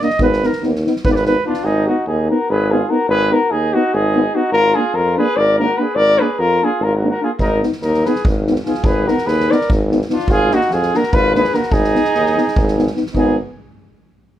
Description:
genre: balkan folk, Balkan brass band.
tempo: 292 BPM (eighths).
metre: 7/8.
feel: straight.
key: Ab dorian sharp4.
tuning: A4 = 442 Hz.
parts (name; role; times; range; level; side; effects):
warm flugelhorn; second line; 0.0-13.4 s; D4 to Eb5; -22 LUFS; right 2 dB; none.
dark euphonium; accompaniment; 0.0-13.4 s; D4 to Eb4; -22 LUFS; left 5 dB; none.
mellow euphonium; accompaniment; 0.0-13.4 s; Bb3 to Cb4; -22 LUFS; right 4 dB; none.
soft-mallet drum kit; percussion; 0.0-1.6, 7.4-13.4 s; kick drum, snare drum; -22 LUFS; equal; none.
clear tuba; bass; 0.2-13.4 s; Ab1 to F2; -19 LUFS; equal; none.
dark cornet; melody; 1.5-13.4 s; F4 to D5; -17 LUFS; left 1 dB; plate reverb.
room: moderate studio ambience, RT60 0.5 s.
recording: none.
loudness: -13 LUFS.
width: side -12 dB against mid.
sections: 0.0-1.6 A section; 1.6-13.1 B section; 13.1-14.4 C section.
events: flugelhorn solo 0.0-1.6.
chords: 0.2 Abm; 4.5 Bb/Ab; 7.4 Abm; 10.3 Bb/Ab; 11.7 Abm.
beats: 0.00 | 0.20 0.41 0.61 0.82 1.02 1.23 1.43 | 1.64 1.84 2.05 2.25 2.46 2.66 2.87 | 3.08 3.28 3.49 3.69 3.90 4.10 4.31 | 4.51 4.72 4.93 5.13 5.34 5.54 5.75 | 5.96 6.16 6.37 6.57 6.78 6.99 7.19 | 7.40 7.60 7.81 8.02 8.22 8.43 8.63 | 8.84 9.04 9.25 9.46 9.66 9.87 10.07 | 10.28 10.48 10.69 10.89 11.10 11.30 11.51 | 11.71 11.92 12.12 12.33 12.53 12.74 12.94 | 13.14 13.35.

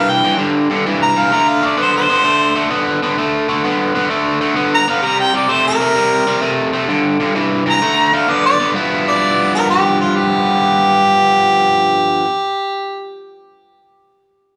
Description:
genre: blues.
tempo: 129 BPM.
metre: 4/4.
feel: swing 67% on 8ths.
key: G mixolydian.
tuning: A4 = 440 Hz.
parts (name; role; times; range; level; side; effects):
mellow harmonica; melody; 0.0-13.2 s; F4 to Bb5; -16 LUFS; equal; slapback echo.
overdriven electric guitar; riff; 0.0-12.3 s; G2 to E4; -18 LUFS; equal; slapback echo.
room: light reverb, small room ambience.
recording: live gig heard through the venue's PA, club reverb.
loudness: -15 LUFS.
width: mono.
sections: 0.0-8.7 A section; 8.7-12.4 B section.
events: harmonica solo 0.0-8.7.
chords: 0.0 G5; 1.3 D5; 5.0 C5; 6.9 G5; 7.8 D5; 8.7 G6.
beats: 0.39 0.86 | 1.32 1.78 2.25 2.71 | 3.17 3.64 4.10 4.56 | 5.03 5.49 5.96 6.42 | 6.88 7.35 7.81 8.27 | 8.74 9.20 9.67 10.13 | 10.59 11.06 11.52 11.99.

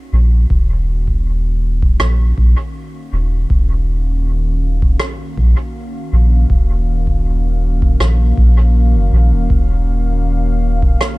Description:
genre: ambient dub.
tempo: 80 BPM.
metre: 4/4.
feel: straight.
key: Eb minor.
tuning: A4 = 439 Hz.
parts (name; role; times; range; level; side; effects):
warbly tape-like pad; sustained chords; 0.0-11.2 s; Eb3 to F5; -25 LUFS; left 1 dB; chorus, built-in reverb.
soft dub sub bass; bass; 0.1-11.0 s; Eb1 to Bb1; -13 LUFS; equal; none.
electronic kick drum; drums; 0.5-11.0 s; none; -17 LUFS; equal; none.
rim click; drums; 2.0-11.2 s; none; -22 LUFS; right 1 dB; dub echo.
room: small room ambience.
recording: dark, warm production.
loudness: -12 LUFS.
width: side -21 dB against mid.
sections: 0.0-11.2 A section.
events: fade-in on ambient pad 0.0-11.2.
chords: 0.0 Ebm7.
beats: | 0.50 1.25 2.00 2.75 | 3.50 4.25 5.00 5.75 | 6.50 7.25 8.00 8.75 | 9.50 10.25 11.00.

